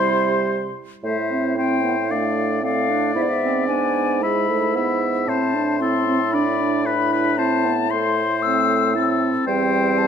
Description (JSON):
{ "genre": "quick classical-period movement for wind quintet", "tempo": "114 BPM", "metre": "4/4", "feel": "straight", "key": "A minor", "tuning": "A4 = 440 Hz", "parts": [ { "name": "hollow concert flute", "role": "melody", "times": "0.0-10.1 s", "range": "D5 to E6", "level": "-24 LUFS", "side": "left 10 dB", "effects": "none" }, { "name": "clear oboe", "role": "second line", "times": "0.0-10.1 s", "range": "A4 to E5", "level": "-25 LUFS", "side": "left 4 dB", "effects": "none" }, { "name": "mellow French horn", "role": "accompaniment", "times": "0.0-10.1 s", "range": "G3 to D4", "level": "-25 LUFS", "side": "equal", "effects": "none" }, { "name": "warm clarinet", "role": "accompaniment", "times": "0.0-10.1 s", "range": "C4 to E4", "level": "-26 LUFS", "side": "right 11 dB", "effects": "none" }, { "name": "dark bassoon", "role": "bass", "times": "0.0-10.1 s", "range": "E2 to C3", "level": "-24 LUFS", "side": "right 4 dB", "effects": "none" } ], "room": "moderate recital hall reverb, RT60 1.5 s", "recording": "close, detailed microphones", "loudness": "-18 LUFS", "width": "side -7 dB against mid", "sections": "0.0-1.0 A section; 1.0-10.1 B section", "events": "none", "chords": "0.0 C; 1.0 Am; 2.1 F6/A; 3.2 E7/G#; 5.3 Am; 6.3 E5/A; 7.4 Am; 9.5 C/E", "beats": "0.50 | 1.04 1.57 2.10 2.63 | 3.16 3.69 4.22 4.75 | 5.28 5.80 6.33 6.86 | 7.38 7.91 8.43 8.95 | 9.47 9.99" }